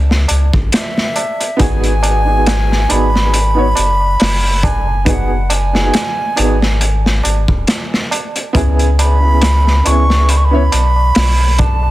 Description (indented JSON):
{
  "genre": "trip hop",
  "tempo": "69 BPM",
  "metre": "4/4",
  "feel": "swing 56% on 16ths",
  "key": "C# minor",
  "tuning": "A4 = 440 Hz",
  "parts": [
    { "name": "warm sub bass", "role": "bass", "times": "0.0-11.9 s", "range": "D#1 to C#2", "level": "-13 LUFS", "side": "equal", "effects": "none" },
    { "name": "crunchy breakbeat drum kit", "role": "drums", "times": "0.1-11.8 s", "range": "hi-hat, kick drum, snare drum", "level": "-16 LUFS", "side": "equal", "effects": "none" },
    { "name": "tabla", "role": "percussion", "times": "0.1-11.9 s", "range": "none", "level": "-26 LUFS", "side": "right 4 dB", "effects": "none" },
    { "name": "bright baroque flute", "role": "melody", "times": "0.8-11.9 s", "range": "E5 to C#6", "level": "-18 LUFS", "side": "right 2 dB", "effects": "tape echo" },
    { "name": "warm upright piano", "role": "accompaniment", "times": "1.6-10.7 s", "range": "B3 to C#5", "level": "-19 LUFS", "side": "right 2 dB", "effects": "tremolo, tape echo" }
  ],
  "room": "studio reverb",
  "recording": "dense, heavily limited modern master",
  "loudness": "-11 LUFS",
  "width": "side -16 dB against mid",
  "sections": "0.0-11.9 A section",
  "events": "none",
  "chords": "0.0 C#m; 1.6 G#m7; 8.5 C#m7"
}